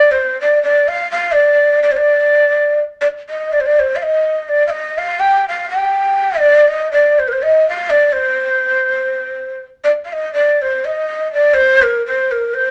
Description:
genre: balkan folk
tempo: free time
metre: none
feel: none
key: C minor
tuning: A4 = 440 Hz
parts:
  - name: breathy ney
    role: solo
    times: 0.0-12.7 s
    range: Bb4 to G5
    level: -14 LUFS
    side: equal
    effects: none
room: wet small room reverb, RT60 0.5 s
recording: none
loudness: -15 LUFS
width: mono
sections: 0.0-9.8 A section; 9.8-12.7 A section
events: none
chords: none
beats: free time

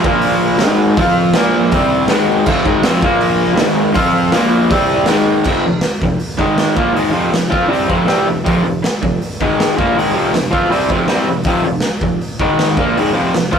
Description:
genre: garage rock duo or trio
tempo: 160 BPM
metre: 4/4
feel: straight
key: unclear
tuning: A4 = 440 Hz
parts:
  - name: raw garage guitar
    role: riff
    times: 0.0-13.6 s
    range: F2 to F4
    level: -13 LUFS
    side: equal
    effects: overdrive
  - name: raw garage drum kit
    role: drums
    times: 0.0-13.6 s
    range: crash cymbal, hi-hat, kick drum, snare drum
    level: -19 LUFS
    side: equal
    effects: none
room: moderate studio reverb, RT60 0.6 s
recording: rough rehearsal-room recording, tube saturation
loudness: -12 LUFS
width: side -7 dB against mid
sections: 0.0-5.5 A section; 5.5-13.6 B section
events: none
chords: 0.1 Bb5; 0.6 Ab5; 1.0 F5; 1.4 Bb5; 1.7 C5; 2.1 Ab5; 2.5 F5; 3.0 Bb5; 3.6 Ab5; 4.0 F5; 4.3 Bb5; 4.7 C5; 5.1 Ab5; 5.5 F5; 6.4 Ab5; 6.8 F5; 9.4 Ab5; 9.8 F5; 12.4 Ab5; 12.8 F5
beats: 0.24 0.61 | 0.98 1.35 1.73 2.10 | 2.47 2.85 3.22 3.59 | 3.96 4.34 4.71 5.08 | 5.46 5.83 6.21 6.58 | 6.96 7.33 7.71 8.08 | 8.46 8.83 9.21 9.58 | 9.96 10.33 10.71 11.08 | 11.46 11.83 12.21 12.58 | 12.95 13.33

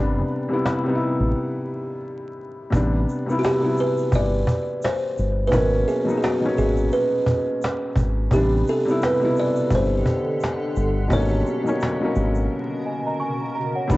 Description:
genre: lo-fi hip hop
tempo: 86 BPM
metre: 4/4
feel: swing 59% on 16ths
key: unclear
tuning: A4 = 441 Hz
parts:
  - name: felt-muted upright piano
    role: accompaniment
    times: 0.0-14.0 s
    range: A#2 to E4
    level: -24 LUFS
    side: left 1 dB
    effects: cassette tape
  - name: deep dub fingered electric bass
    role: bass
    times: 0.0-14.0 s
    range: G1 to A1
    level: -22 LUFS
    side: equal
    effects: none
  - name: cajon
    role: drums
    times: 0.3-14.0 s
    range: none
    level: -24 LUFS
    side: equal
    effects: cassette tape
  - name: tube shaker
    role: percussion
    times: 2.7-14.0 s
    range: none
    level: -52 LUFS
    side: right 4 dB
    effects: none
  - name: buzzing kalimba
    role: melody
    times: 3.4-11.8 s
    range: F#4 to D5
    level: -23 LUFS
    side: right 1 dB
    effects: cassette tape, analog delay
  - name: granular cloud pad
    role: sustained chords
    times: 9.5-14.0 s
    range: B2 to A#4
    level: -29 LUFS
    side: right 1 dB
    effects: built-in reverb, cassette tape
  - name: celesta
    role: second line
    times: 12.9-14.0 s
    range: C#5 to C#6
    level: -27 LUFS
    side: right 2 dB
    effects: cassette tape
room: moderate spring reverb, RT60 1.9 s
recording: home recording on cassette, vinyl crackle, nothing above 7.9 kHz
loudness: -19 LUFS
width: side -18 dB against mid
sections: 0.0-2.7 A section; 2.7-14.0 B section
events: break 0.0-2.7, 12.5-13.9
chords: 0.0 Am11 (rootless); 5.5 G#m11; 8.3 Am11; 11.1 G#m11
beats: 0.64 1.33 2.03 | 2.73 3.43 4.13 4.82 | 5.52 6.22 6.92 7.61 | 8.31 9.01 9.71 10.40 | 11.10 11.80 12.50 13.20 | 13.89

